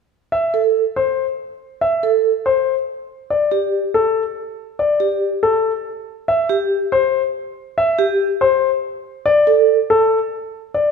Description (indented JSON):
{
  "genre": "classical, minimalist pattern music",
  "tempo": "282 BPM (eighths)",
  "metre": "7/8",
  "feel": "straight",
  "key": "unclear",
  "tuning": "A4 = 443 Hz",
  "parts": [
    { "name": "warm grand piano", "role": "melody", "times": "0.3-10.9 s", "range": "A4 to E5", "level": "-16 LUFS", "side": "left 3 dB", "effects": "none" },
    { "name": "vibraphone with medium mallets", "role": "arpeggios", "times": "0.5-9.7 s", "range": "G4 to A4", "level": "-18 LUFS", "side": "right 5 dB", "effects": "none" }
  ],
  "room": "moderate recital hall reverb, RT60 1.5 s",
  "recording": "none",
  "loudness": "-15 LUFS",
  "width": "side -5 dB against mid",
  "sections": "0.3-10.9 A section",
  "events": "none",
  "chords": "0.3 N.C.; 9.3 Asus4",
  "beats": "| 0.32 0.54 0.75 0.96 1.18 1.39 1.60 | 1.81 2.03 2.24 2.45 2.66 2.88 3.09 | 3.30 3.52 3.73 3.94 4.15 4.37 4.58 | 4.79 5.00 5.22 5.43 5.64 5.86 6.07 | 6.28 6.49 6.71 6.92 7.13 7.34 7.56 | 7.77 7.98 8.20 8.41 8.62 8.83 9.05 | 9.26 9.47 9.69 9.90 10.11 10.32 10.54 | 10.75"
}